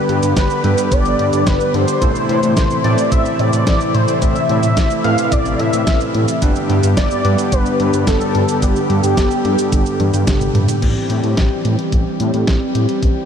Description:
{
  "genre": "synthwave",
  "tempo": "109 BPM",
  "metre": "4/4",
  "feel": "straight",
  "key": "unclear",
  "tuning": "A4 = 440 Hz",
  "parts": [
    { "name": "wide unison lead", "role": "melody", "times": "0.0-10.3 s", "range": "G4 to F5", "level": "-20 LUFS", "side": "equal", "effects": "ensemble chorus, cassette tape, diffuse ambient delay" },
    { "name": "brassy analog pad", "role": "sustained chords", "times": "0.0-13.3 s", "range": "C3 to G4", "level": "-20 LUFS", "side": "left 1 dB", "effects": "chorus, sidechain pumping" },
    { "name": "wide detuned saw bass", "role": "bass", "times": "0.1-13.1 s", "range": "G1 to A2", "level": "-18 LUFS", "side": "equal", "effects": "chorus" },
    { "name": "clean 12-bit digital drum machine", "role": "drums", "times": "0.1-13.1 s", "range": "cabasa, crash cymbal, hi-hat, snare drum, toms", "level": "-24 LUFS", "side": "equal", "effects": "none" },
    { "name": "electronic kick drum", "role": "drums", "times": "0.4-13.1 s", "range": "none", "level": "-17 LUFS", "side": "equal", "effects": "none" },
    { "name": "overdriven tine electric piano", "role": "stabs", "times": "0.6-10.8 s", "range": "G2 to C5", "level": "-23 LUFS", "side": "right 2 dB", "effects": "medium tremolo, tape echo" }
  ],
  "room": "moderate huge ambient reverb, RT60 7.2 s",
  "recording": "dreamy mix soaked in reverb",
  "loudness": "-13 LUFS",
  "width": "side -8 dB against mid",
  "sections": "0.0-10.8 A section; 10.8-13.3 B section",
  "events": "drum fill 10.0-10.8",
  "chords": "0.0 G; 2.0 Am; 6.4 G; 10.8 C/A",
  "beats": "0.37 0.92 1.47 | 2.02 2.57 3.12 3.67 | 4.22 4.77 5.32 5.87 | 6.42 6.97 7.52 8.07 | 8.62 9.17 9.72 10.27 | 10.82 11.38 11.93 12.48 | 13.03"
}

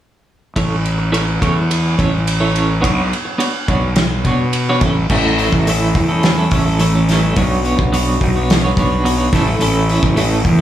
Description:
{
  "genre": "quiet-loud alternative rock",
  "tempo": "106 BPM",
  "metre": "4/4",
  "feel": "straight",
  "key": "A major",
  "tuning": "A4 = 440 Hz",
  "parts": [
    { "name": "twelve-string electric guitar", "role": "arpeggios", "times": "0.6-10.6 s", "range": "A2 to C#5", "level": "-18 LUFS", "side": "right 2 dB", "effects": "tremolo, digital delay" },
    { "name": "fuzz fingered electric bass", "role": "bass", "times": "0.6-10.6 s", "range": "A1 to B2", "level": "-16 LUFS", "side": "equal", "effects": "overdrive" },
    { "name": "loose indie drum kit", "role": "drums", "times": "0.6-10.6 s", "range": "crash cymbal, hi-hat, kick drum, ride cymbal, snare drum", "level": "-18 LUFS", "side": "equal", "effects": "none" }
  ],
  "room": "little or no reverb",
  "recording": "studio reverb",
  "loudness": "-13 LUFS",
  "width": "side -11 dB against mid",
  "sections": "0.6-5.1 A section; 5.1-10.6 B section",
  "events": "none",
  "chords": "0.6 A; 2.8 Bmadd9; 4.8 A; 7.4 Bmadd9; 9.3 A",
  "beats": "| 0.56 1.13 1.70 2.27 | 2.84 3.40 3.97 4.54 | 5.10 5.67 6.24 6.80 | 7.36 7.93 8.49 9.05 | 9.61 10.17"
}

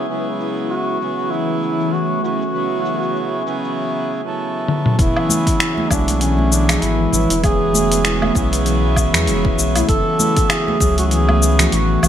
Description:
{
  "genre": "organic downtempo",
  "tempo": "98 BPM",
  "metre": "4/4",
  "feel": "swing 57% on 16ths",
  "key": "unclear",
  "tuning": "A4 = 437 Hz",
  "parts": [
    { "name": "pedal harmonium", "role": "accompaniment", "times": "0.0-12.1 s", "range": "C#3 to A4", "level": "-23 LUFS", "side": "right 3 dB", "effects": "sidechain pumping, ping-pong delay" },
    { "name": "ethereal airy pad", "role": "sustained chords", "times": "0.0-12.1 s", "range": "E3 to C#5", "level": "-25 LUFS", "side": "left 1 dB", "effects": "ensemble chorus, built-in reverb, phaser, sidechain pumping" },
    { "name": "bronze singing bowl", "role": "texture", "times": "0.0-3.8 s", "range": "none", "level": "barely audible", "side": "none", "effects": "none" },
    { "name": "dusty soul sampler-style drum kit", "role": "drums", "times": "0.1-12.1 s", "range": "finger snaps, hi-hat, shaker, toms, woodblock", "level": "-20 LUFS", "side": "left 2 dB", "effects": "overdrive, low-pass filter on hats, studio reverb, low-pass filter on perc, low-pass filter on snare, low-pass filter on toms, gated reverb" },
    { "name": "mellow duduk", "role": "melody", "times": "0.7-12.1 s", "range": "C#4 to A4", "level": "-22 LUFS", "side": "right 1 dB", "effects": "ping-pong delay" },
    { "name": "warm sub bass", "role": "bass", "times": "5.0-12.1 s", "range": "E1 to E2", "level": "-19 LUFS", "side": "equal", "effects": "sidechain pumping" },
    { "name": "electronic kick drum", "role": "drums", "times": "5.0-10.9 s", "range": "none", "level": "-19 LUFS", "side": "equal", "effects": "overdrive, studio reverb" },
    { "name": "marimba with soft mallets", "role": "arpeggios", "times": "5.2-12.0 s", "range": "E3 to G#4", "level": "-23 LUFS", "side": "left 2 dB", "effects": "ping-pong delay" },
    { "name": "congas", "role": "percussion", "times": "5.3-12.1 s", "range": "none", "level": "-26 LUFS", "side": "right 3 dB", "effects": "none" }
  ],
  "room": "moderate plate reverb, RT60 2.3 s",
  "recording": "bright 1980s-style digital production",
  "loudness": "-15 LUFS",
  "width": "side -10 dB against mid",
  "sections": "0.0-5.0 A section; 5.0-12.1 B section",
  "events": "filter sweep on ambient pad 0.0-5.0; drum fill 4.7-5.0",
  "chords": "0.1 F#m7; 5.0 E7; 9.9 F#m7",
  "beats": "| 0.09 0.70 1.31 1.93 | 2.54 3.15 3.76 4.38 | 4.99 5.60 6.21 6.83 | 7.44 8.05 8.66 9.27 | 9.89 10.50 11.11 11.72"
}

